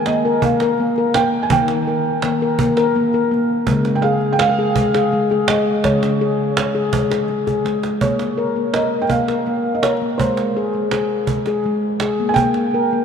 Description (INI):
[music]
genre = world meditative, meditative tuned percussion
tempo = 55 BPM (dotted quarters)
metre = 6/8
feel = straight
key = unclear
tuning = A4 = 444 Hz
[part]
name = felt-muted upright piano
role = melody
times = 0.0-13.0 s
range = C5 to Ab5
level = -22 LUFS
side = right 4 dB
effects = tape echo
[part]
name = handpan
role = arpeggios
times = 0.0-13.0 s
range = Db3 to Bb4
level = -17 LUFS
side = left 2 dB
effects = none
[part]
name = cajon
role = percussion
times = 0.1-13.0 s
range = none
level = -25 LUFS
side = right 5 dB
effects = none
[sound]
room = wet cathedral reverb, RT60 5.3 s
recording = in a vast, echoing space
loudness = -15 LUFS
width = side -7 dB against mid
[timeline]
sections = 0.0-8.0 A section; 8.0-13.0 B section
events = drum fill 7.5-8.0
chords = 0.0 Eb; 3.7 Db; 8.0 N.C.; 10.2 Ab; 12.4 N.C.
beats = 0.43 | 1.51 2.59 | 3.68 4.76 | 5.85 6.93 | 8.02 9.10 | 10.19 11.28 | 12.37